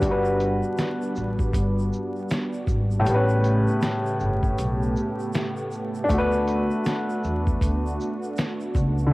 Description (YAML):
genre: lo-fi hip hop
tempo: 79 BPM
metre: 4/4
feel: swing 63% on 16ths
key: D major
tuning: A4 = 437 Hz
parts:
  - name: warm upright piano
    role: accompaniment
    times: 0.0-9.1 s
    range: A2 to B4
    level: -25 LUFS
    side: left 1 dB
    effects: cassette tape, low-pass filter
  - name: warm analog pad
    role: sustained chords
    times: 0.0-9.1 s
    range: C#3 to G4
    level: -29 LUFS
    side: right 1 dB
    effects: chorus, low-pass filter, cassette tape
  - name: upright bass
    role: bass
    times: 0.0-9.1 s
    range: G1 to E2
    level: -26 LUFS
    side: equal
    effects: tube saturation
  - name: lo-fi sampler-style drum kit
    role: drums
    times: 0.0-9.0 s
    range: hi-hat, kick drum, shaker, snare drum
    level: -26 LUFS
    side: equal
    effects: cassette tape
  - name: tube shaker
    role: percussion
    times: 0.0-9.1 s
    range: none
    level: -52 LUFS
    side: right 6 dB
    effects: none
room: light reverb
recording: home recording on cassette, vinyl crackle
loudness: -22 LUFS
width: side -20 dB against mid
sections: 0.0-9.1 A section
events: none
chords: 0.0 Gmaj7; 3.1 A9; 6.1 D6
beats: | 0.02 0.78 1.54 2.30 | 3.06 3.82 4.58 5.34 | 6.10 6.86 7.62 8.38